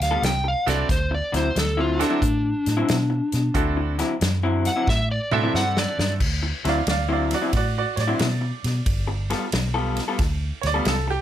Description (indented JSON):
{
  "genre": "electric blues shuffle",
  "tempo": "90 BPM",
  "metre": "4/4",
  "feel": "swing 67% on 8ths",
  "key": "D mixolydian",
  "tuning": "A4 = 441 Hz",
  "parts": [
    { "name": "overdriven slide guitar", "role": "melody", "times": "0.0-6.1 s", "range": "D4 to G5", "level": "-24 LUFS", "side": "left 1 dB", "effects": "none" },
    { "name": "vintage muted fingered electric bass", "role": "bass", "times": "0.0-11.2 s", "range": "G1 to B2", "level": "-25 LUFS", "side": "equal", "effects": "none" },
    { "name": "natural country drum kit", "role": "drums", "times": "0.0-11.1 s", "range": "crash cymbal, hi-hat, kick drum, ride cymbal, snare drum, toms", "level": "-26 LUFS", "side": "equal", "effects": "none" },
    { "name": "electric guitar through a small old amp", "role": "riff", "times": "0.1-11.1 s", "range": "D3 to A4", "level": "-26 LUFS", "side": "left 2 dB", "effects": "none" },
    { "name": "bright upright piano", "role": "accompaniment", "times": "0.7-11.2 s", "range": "C4 to F5", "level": "-26 LUFS", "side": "right 6 dB", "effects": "none" }
  ],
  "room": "light reverb",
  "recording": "none",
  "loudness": "-20 LUFS",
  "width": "side -11 dB against mid",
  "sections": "0.0-6.2 A section; 6.2-11.2 A section",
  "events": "electric slide guitar solo 0.0-6.2; drum fill 4.9-6.2",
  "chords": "0.0 G9; 0.9 D9; 8.9 G9"
}